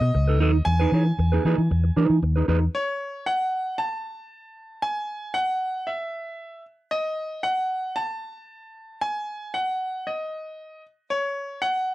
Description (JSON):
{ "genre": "disco", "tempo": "115 BPM", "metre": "4/4", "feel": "straight", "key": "unclear", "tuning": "A4 = 442 Hz", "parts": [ { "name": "bright grand piano", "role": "melody", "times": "0.0-11.9 s", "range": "C#5 to A5", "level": "-27 LUFS", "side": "equal", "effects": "none" }, { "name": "mellow electric guitar", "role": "accompaniment", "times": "0.0-2.7 s", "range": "D#4 to C#5", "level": "-24 LUFS", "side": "right 4 dB", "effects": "phaser" }, { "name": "fingered electric bass", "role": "bass", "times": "0.0-2.7 s", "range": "C#2 to E3", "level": "-20 LUFS", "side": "left 1 dB", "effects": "none" } ], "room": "little or no reverb", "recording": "dry, close 1970s-style studio recording", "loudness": "-22 LUFS", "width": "side -16 dB against mid", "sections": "0.0-2.7 A section; 2.7-11.9 B section", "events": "none", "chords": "0.0 B7; 0.7 Emaj7; 2.7 N.C." }